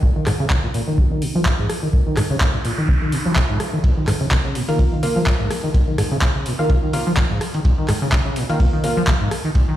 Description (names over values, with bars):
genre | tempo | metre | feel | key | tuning
acid house | 126 BPM | 4/4 | swing 55% on 16ths | Bb minor pentatonic | A4 = 440 Hz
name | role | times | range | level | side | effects
liquid acid bass | riff | 0.0-9.8 s | Ab2 to F3 | -21 LUFS | equal | wide subtle chorus, sidechain pumping, digital delay
electronic kick drum | drums | 0.0-9.7 s | none | -19 LUFS | equal | none
electro analog drum machine | drums | 0.3-9.4 s | handclaps, hi-hat, rim click | -25 LUFS | equal | none
noise sweep | sound effects | 2.3-3.8 s | none | -30 LUFS | right 3 dB | none
dusty soul sampler-style drum kit | drums | 3.8-9.7 s | hi-hat, ride cymbal, snare drum | -36 LUFS | right 3 dB | sidechain pumping on cymbals, high-pass filter on cymbals, high-pass filter on snare, sidechain pumping on hats, high-pass filter on hats, high-pass filter on room
band-passed chord stab | stabs | 4.7-9.0 s | Bb3 to F5 | -25 LUFS | equal | chorus, phaser, digital delay
room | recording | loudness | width
light reverb, digital ambience | played on a big sound system in a bare room, stone room reverb | -16 LUFS | side -13 dB against mid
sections
0.0-9.8 A section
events
filter sweep on acid bass 0.0-9.8; noise sweep 2.3-3.8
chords
0.0 Bb5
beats
| 0.03 0.51 0.98 1.46 | 1.93 2.41 2.89 3.36 | 3.84 4.31 4.79 5.27 | 5.74 6.22 6.70 7.17 | 7.65 8.12 8.60 9.08 | 9.55